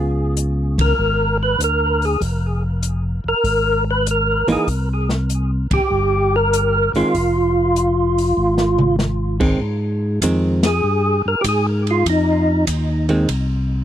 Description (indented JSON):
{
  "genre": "soul jazz organ trio",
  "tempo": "97 BPM",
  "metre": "4/4",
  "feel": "swing 68% on 8ths",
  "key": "F minor",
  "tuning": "A4 = 439 Hz",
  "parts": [
    { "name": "hollow-body jazz guitar", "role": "accompaniment", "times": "0.0-13.3 s", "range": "Eb3 to Ab4", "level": "-20 LUFS", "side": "right 2 dB", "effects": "none" },
    { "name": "tonewheel organ", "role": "bass", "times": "0.0-13.8 s", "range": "F1 to Ab2", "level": "-20 LUFS", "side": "equal", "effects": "overdrive, slow rotary speaker" },
    { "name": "open jazz drum kit", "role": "drums", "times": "0.4-13.5 s", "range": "crash cymbal, hi-hat, kick drum, ride cymbal, snare drum, toms", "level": "-24 LUFS", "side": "equal", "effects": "none" },
    { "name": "percussive tonewheel organ", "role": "melody", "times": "0.8-12.7 s", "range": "Eb4 to Cb5", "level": "-18 LUFS", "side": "equal", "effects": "slow rotary speaker, overdrive, chorus vibrato, tape echo" }
  ],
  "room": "light reverb",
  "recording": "dry, close 1970s-style studio recording",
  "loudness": "-16 LUFS",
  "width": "side -11 dB against mid",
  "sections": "0.0-9.6 A section; 9.6-13.8 A section",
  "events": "band accent 0.7-1.0, 5.6-5.9, 10.5-10.8; drum fill 8.4-9.0",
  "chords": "0.0 Db7; 4.7 C7(no3); 7.1 Fm; 9.6 Fm7"
}